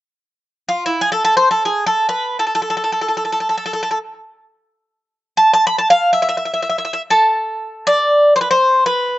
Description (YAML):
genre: greek folk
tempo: free time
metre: none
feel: none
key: A harmonic minor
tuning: A4 = 440 Hz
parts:
  - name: Greek bouzouki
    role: melody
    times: 0.7-9.2 s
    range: E4 to B5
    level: -14 LUFS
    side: equal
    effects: none
room: light reverb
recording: recorded outdoors, with no room sound, nothing above 8.0 kHz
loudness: -14 LUFS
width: side -15 dB against mid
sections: 0.2-9.2 A section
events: none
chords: none